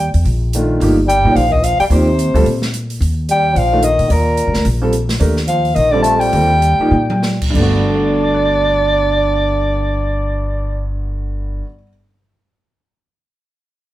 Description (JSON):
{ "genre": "modal jazz", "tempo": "185-218 BPM", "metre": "4/4", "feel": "swing 60% on 8ths", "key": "unclear", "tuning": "A4 = 440 Hz", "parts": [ { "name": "dark soprano saxophone", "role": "melody", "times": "0.0-10.9 s", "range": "Bb4 to A5", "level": "-16 LUFS", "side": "right 1 dB", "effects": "none" }, { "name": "clear trombone", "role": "second line", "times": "0.0-10.9 s", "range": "Bb2 to D4", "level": "-21 LUFS", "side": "left 3 dB", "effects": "none" }, { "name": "upright bass", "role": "bass", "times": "0.0-11.6 s", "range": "G1 to Bb2", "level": "-17 LUFS", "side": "equal", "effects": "none" }, { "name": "open jazz drum kit", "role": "drums", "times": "0.1-7.6 s", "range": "crash cymbal, hi-hat, kick drum, snare drum, toms", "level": "-24 LUFS", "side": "right 1 dB", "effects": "none" }, { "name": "warm upright piano", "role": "accompaniment", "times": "0.5-11.9 s", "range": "G2 to A6", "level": "-19 LUFS", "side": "right 1 dB", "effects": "none" } ], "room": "moderate studio reverb, RT60 0.7 s", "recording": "heard from further back in the room", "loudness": "-12 LUFS", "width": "side -15 dB against mid", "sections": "0.0-3.0 A section; 3.0-7.5 B section; 7.5-10.1 C section", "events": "slowing down 5.2-7.5; drum fill 6.9-7.2", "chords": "0.0 Ebmaj9; 3.0 Ebadd9; 7.5 Gmaj9", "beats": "0.25 0.53 | 0.80 1.08 1.35 1.63 | 1.90 2.18 2.45 2.73 | 3.00 3.28 3.55 3.83 | 4.10 4.38 4.65 4.93 | 5.20 5.48 5.76 6.04 | 6.33 6.62 6.92 7.23 | 7.55 7.87 8.20 8.52 | 8.84 9.17 9.49 9.82" }